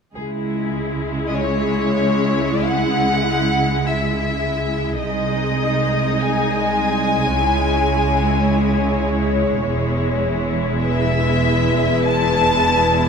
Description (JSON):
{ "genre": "classical, slow romantic movement for string orchestra", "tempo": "44-54 BPM", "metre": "4/4", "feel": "rubato", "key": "C# minor", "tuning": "A4 = 440 Hz", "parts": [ { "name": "dark studio violin section", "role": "second line", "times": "0.1-13.1 s", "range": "G#4 to D#5", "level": "-24 LUFS", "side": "left 2 dB", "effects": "none" }, { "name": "warm studio cello section", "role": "bass", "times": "0.1-13.1 s", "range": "B#1 to E2", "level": "-23 LUFS", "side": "right 2 dB", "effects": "none" }, { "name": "rich studio viola section", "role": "accompaniment", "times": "0.2-13.1 s", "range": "G#3 to E4", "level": "-23 LUFS", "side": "equal", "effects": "none" }, { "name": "warm studio double bass section", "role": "bass", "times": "0.2-13.1 s", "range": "E1 to C#2", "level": "-24 LUFS", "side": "right 3 dB", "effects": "none" }, { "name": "clear studio violin section", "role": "melody", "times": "1.3-13.1 s", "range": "C#5 to A5", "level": "-21 LUFS", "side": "left 2 dB", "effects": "none" } ], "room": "moderate scoring stage reverb, RT60 1.5 s", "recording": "none", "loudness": "-16 LUFS", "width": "side -6 dB against mid", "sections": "0.1-13.1 A section", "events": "none", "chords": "0.1 C#m; 5.0 G#/B#; 7.4 C#m; 9.7 E" }